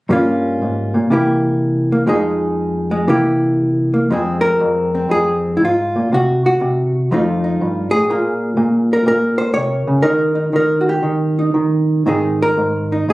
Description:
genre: solo jazz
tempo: 120 BPM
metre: 4/4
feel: swing 67% on 8ths, rubato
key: F minor from 4.1 s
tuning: A4 = 440 Hz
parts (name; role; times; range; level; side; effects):
- hollow-body jazz guitar; solo; 0.1-13.1 s; F2 to Db5; -14 LUFS; equal; none
room: moderate studio reverb, RT60 0.6 s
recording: recorded on a phone in the room, studio reverb, compression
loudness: -14 LUFS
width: side -18 dB against mid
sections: 0.1-4.1 A section; 4.1-13.1 B section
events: none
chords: 0.1 Gm7b5; 1.1 C7; 2.1 Fm7; 3.1 C7; 4.1 Fm; 6.1 N.C.; 7.1 F7; 8.1 Bbm7; 10.0 N.C.; 12.1 Ab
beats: | 0.07 0.59 1.09 1.58 | 2.06 2.55 3.05 3.57 | 4.09 4.60 5.10 5.61 | 6.11 6.60 7.09 7.58 | 8.07 8.56 9.05 9.54 | 10.04 10.54 11.05 11.56 | 12.08 12.58 13.09

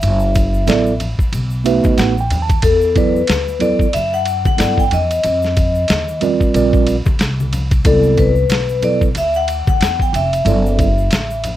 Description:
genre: hip hop, jazz-hop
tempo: 92 BPM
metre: 4/4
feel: swing 58% on 16ths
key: unclear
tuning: A4 = 445 Hz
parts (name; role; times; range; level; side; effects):
- vibraphone with medium hard mallets; melody; 0.0-11.4 s; A4 to G5; -18 LUFS; left 3 dB; none
- upright bass; bass; 0.0-11.6 s; F1 to G2; -19 LUFS; equal; none
- boom bap sampler-style drum kit; drums; 0.0-11.6 s; hi-hat, kick drum, ride cymbal, snare drum; -18 LUFS; equal; none
- egg shaker and congas; percussion; 0.0-11.6 s; none; -28 LUFS; left 3 dB; none
- mellow tine electric piano; accompaniment; 0.7-10.9 s; F#3 to A5; -16 LUFS; right 5 dB; slow stereo tremolo
room: light reverb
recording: none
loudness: -13 LUFS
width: side -13 dB against mid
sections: 0.0-11.6 A section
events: tine electric piano fill 1.3-2.6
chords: 0.0 F#m7; 1.3 B7; 2.6 Em7; 5.2 F5; 6.5 Bbadd9; 7.8 Cmaj7; 10.5 D69/F#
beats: | 0.02 0.68 1.33 1.98 | 2.63 3.29 3.94 4.59 | 5.24 5.89 6.55 7.20 | 7.85 8.50 9.15 9.81 | 10.46 11.11

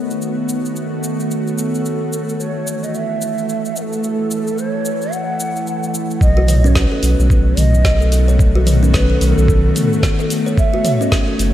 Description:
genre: organic downtempo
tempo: 110 BPM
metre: 4/4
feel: swing 59% on 16ths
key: unclear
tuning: A4 = 440 Hz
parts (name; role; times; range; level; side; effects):
- bowed-like drone; sustained chords; 0.0-11.5 s; D#3 to A4; -20 LUFS; equal; built-in reverb, sidechain pumping
- bronze singing bowl; texture; 0.0-6.2 s; C#5; -43 LUFS; left 5 dB; none
- deep house drum kit; drums; 0.1-11.5 s; hi-hat, shaker, snare drum, toms; -24 LUFS; equal; small room reverb
- mellow hollow low ney; melody; 1.6-11.5 s; A4 to F#5; -23 LUFS; right 1 dB; tape echo
- warm sub bass; bass; 6.2-11.5 s; F#1 to B1; -13 LUFS; equal; sidechain pumping
- electronic kick drum; drums; 6.2-11.2 s; none; -16 LUFS; equal; small room reverb
- kalimba; arpeggios; 6.4-11.4 s; C#4 to C#5; -23 LUFS; equal; tape echo
room: moderate lush hall reverb, RT60 2.8 s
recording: dreamy mix soaked in reverb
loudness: -14 LUFS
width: side -12 dB against mid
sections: 0.0-6.2 A section; 6.2-11.5 B section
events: none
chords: 0.0 B7; 1.8 F#m7; 6.2 B7; 10.6 F#m7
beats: 0.21 0.76 1.30 | 1.85 2.39 2.94 3.48 | 4.03 4.57 5.12 5.67 | 6.21 6.76 7.30 7.85 | 8.39 8.94 9.48 10.03 | 10.57 11.12

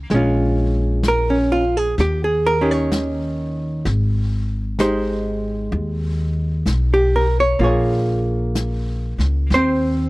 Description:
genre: jazz ballad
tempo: 64 BPM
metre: 4/4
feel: swing 67% on 8ths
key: Ab major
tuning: A4 = 441 Hz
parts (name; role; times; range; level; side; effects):
- hollow-body jazz guitar; accompaniment; 0.0-10.1 s; Eb3 to Db5; -19 LUFS; right 1 dB; none
- upright bass; bass; 0.0-10.1 s; Ab1 to Eb2; -20 LUFS; equal; none
- vintage brush drum kit; drums; 0.1-10.1 s; brushed snare drum, hi-hat, snare drum; -29 LUFS; left 1 dB; none
room: studio reverb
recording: dry, close 1970s-style studio recording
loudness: -17 LUFS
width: side -21 dB against mid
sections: 0.0-10.1 A section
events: none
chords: 0.1 Bbm7; 2.0 Eb7; 3.8 Abmaj7; 7.6 Bbm7; 9.5 Eb5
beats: | 0.10 1.04 1.97 2.91 | 3.85 4.78 5.72 6.66 | 7.60 8.55 9.50

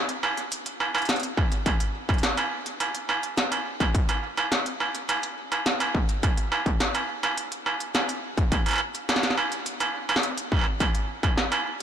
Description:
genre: IDM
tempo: 105 BPM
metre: 4/4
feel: straight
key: none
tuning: none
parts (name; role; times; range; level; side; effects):
- industrial drum kit; drums; 0.1-11.8 s; hi-hat, snare drum, struck metal; -25 LUFS; right 1 dB; tape echo
- electronic kick drum; drums; 1.4-11.3 s; none; -24 LUFS; equal; distortion
room: light reverb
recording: blown-out, overdriven recording, overdrive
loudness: -23 LUFS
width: side -9 dB against mid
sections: 0.0-11.8 A section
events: none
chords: none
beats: 0.52 1.09 | 1.66 2.23 2.80 3.38 | 3.95 4.52 5.09 5.66 | 6.23 6.80 7.38 7.95 | 8.52 9.09 9.66 10.23 | 10.80 11.38

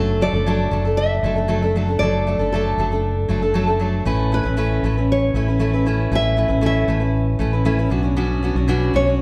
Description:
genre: acoustic pop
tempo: 117 BPM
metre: 4/4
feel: straight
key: unclear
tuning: A4 = 439 Hz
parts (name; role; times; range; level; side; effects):
- picked steel-string acoustic guitar; accompaniment; 0.0-9.2 s; B2 to B4; -23 LUFS; equal; none
- mellow fretless electric bass; bass; 0.0-9.2 s; F#1 to B1; -23 LUFS; equal; none
- nylon-string guitar; melody; 0.2-9.2 s; A4 to E5; -26 LUFS; equal; none
room: wet scoring stage reverb, RT60 1.6 s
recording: recorded in a church or concert hall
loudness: -19 LUFS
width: mono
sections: 0.0-9.2 A section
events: none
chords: 0.0 D/F#; 4.1 Aadd9; 7.9 Bmadd9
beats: 0.46 0.98 1.49 | 2.01 2.52 3.04 3.55 | 4.06 4.58 5.09 5.61 | 6.12 6.63 7.15 7.66 | 8.17 8.69 9.20

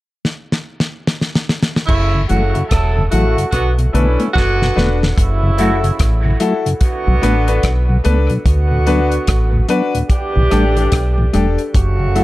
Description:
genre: dub reggae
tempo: 73 BPM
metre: 4/4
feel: swing 62% on 16ths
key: F# phrygian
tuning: A4 = 440 Hz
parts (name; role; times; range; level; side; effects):
- damped 70s drum kit; drums; 0.2-12.2 s; crash cymbal, hi-hat, kick drum, rim click, snare drum; -17 LUFS; equal; none
- mellow horn section; second line; 1.9-12.2 s; C#3 to A4; -20 LUFS; right 3 dB; dub echo
- deep dub fingered electric bass; bass; 1.9-12.2 s; E1 to D2; -15 LUFS; equal; none
- mellow tonewheel organ; accompaniment; 2.1-12.2 s; D2 to E4; -19 LUFS; left 1 dB; chorus vibrato, low-pass filter
- bright upright piano; stabs; 2.3-12.2 s; D4 to B4; -21 LUFS; left 4 dB; low-pass filter, dub echo
- semi-hollow electric guitar; accompaniment; 5.6-5.8 s; A3 to F#4; -28 LUFS; right 3 dB; ensemble chorus, low-pass filter, dub echo
room: light reverb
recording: none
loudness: -13 LUFS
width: side -17 dB against mid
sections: 0.0-1.9 A section; 1.9-5.2 B section; 5.2-12.2 C section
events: drum fill 0.2-1.9, 4.4-5.2; filter sweep 1.9-5.2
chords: 0.0 N.C.; 1.9 F#m7; 3.5 Bm7; 5.2 F#m7; 6.8 Bm7; 8.5 D6; 10.1 A7sus4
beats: 0.24 1.06 | 1.89 2.71 3.53 4.35 | 5.17 5.99 6.82 7.64 | 8.46 9.28 10.10 10.92 | 11.74

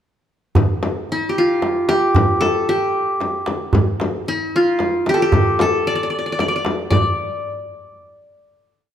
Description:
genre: Arabic maqam ensemble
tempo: 113 BPM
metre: 3/4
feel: straight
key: D maqam bayati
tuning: A4 = 440 Hz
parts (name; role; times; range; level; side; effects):
- darbuka; percussion; 0.6-7.2 s; none; -21 LUFS; right 2 dB; none
- frame drum; percussion; 0.6-7.2 s; none; -22 LUFS; left 2 dB; none
- qanun; melody; 1.1-8.9 s; E4-50c to D5; -18 LUFS; equal; none
room: moderate recital hall reverb, RT60 1.7 s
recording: none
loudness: -16 LUFS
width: side -9 dB against mid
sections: 0.6-6.9 A section; 6.9-8.9 final note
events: none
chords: none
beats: | 0.56 1.09 1.62 | 2.15 2.68 3.21 | 3.74 4.27 4.80 | 5.33 5.86 6.38 | 6.91 7.44 7.97 | 8.50

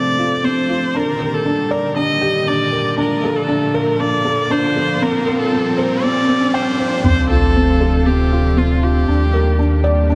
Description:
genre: piano and strings electronica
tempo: 118 BPM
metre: 4/4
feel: straight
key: D phrygian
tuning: A4 = 438 Hz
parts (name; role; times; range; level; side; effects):
- rich viola; melody; 0.0-9.8 s; F4 to Eb5; -22 LUFS; equal; none
- lush unison pad; sustained chords; 0.0-10.2 s; Bb2 to G4; -26 LUFS; equal; chorus
- felt-muted upright piano; riff; 0.0-10.2 s; C4 to G5; -21 LUFS; equal; digital delay
- riser and sub drop; sound effects; 1.0-9.1 s; none; -27 LUFS; equal; none
- warm sub bass; bass; 7.0-10.2 s; D2 to Eb2; -18 LUFS; equal; none
room: moderate huge ambient reverb, RT60 6.6 s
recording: none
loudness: -17 LUFS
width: mono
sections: 0.0-7.0 A section; 7.0-10.2 B section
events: build-up 0.0-7.0; filter sweep on analog synth pad 0.0-7.0; riser 1.0-7.0; drop 7.0-10.2; impact 7.0-9.1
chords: 0.0 Dm7; 0.9 Ebmaj7; 3.0 Bbmaj7; 5.0 C7sus4; 7.0 Dm7; 9.1 Ebmaj7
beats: 0.43 | 0.94 1.45 1.96 2.47 | 2.98 3.49 3.99 4.50 | 5.01 5.52 6.03 6.54 | 7.04 7.55 8.06 8.57 | 9.08 9.59 10.10

